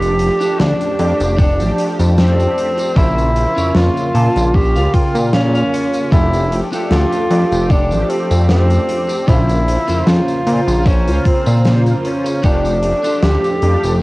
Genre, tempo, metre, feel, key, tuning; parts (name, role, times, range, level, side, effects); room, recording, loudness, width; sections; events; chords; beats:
vaporwave; 76 BPM; 4/4; swing 54% on 16ths; F major; A4 = 442 Hz
mellow tenor saxophone; melody; 0.0-14.0 s; C4 to G4; -18 LUFS; equal; cassette tape, tape echo
mellow synth brass; accompaniment; 0.0-14.0 s; Db3 to C5; -21 LUFS; equal; ensemble chorus, cassette tape
warbly tape-like pad; sustained chords; 0.0-14.0 s; G4 to D6; -27 LUFS; equal; chorus, built-in reverb, cassette tape
electric guitar at the edge of break-up; riff; 0.0-13.5 s; Db4 to A5; -26 LUFS; left 1 dB; analog chorus, cassette tape, analog delay
chorused synth bass; bass; 0.0-14.0 s; F1 to Bb2; -15 LUFS; equal
huge arena drum kit; drums; 0.0-14.0 s; hi-hat, snare drum, tambourine; -23 LUFS; equal; cassette tape
electronic kick drum; drums; 1.4-12.6 s; -14 LUFS; equal; overdrive, cassette tape
light reverb; home recording on cassette; -12 LUFS; side -20 dB against mid
0.0-14.0 A section
clean electric guitar fill 3.8-6.1
0.0 F69; 3.0 Bbmadd9; 6.1 F69; 9.3 Bbmadd9; 12.4 F69
0.59 1.39 2.17 | 2.96 3.75 4.54 5.33 | 6.12 6.91 7.70 8.49 | 9.28 10.07 10.86 11.65 | 12.44 13.23 14.02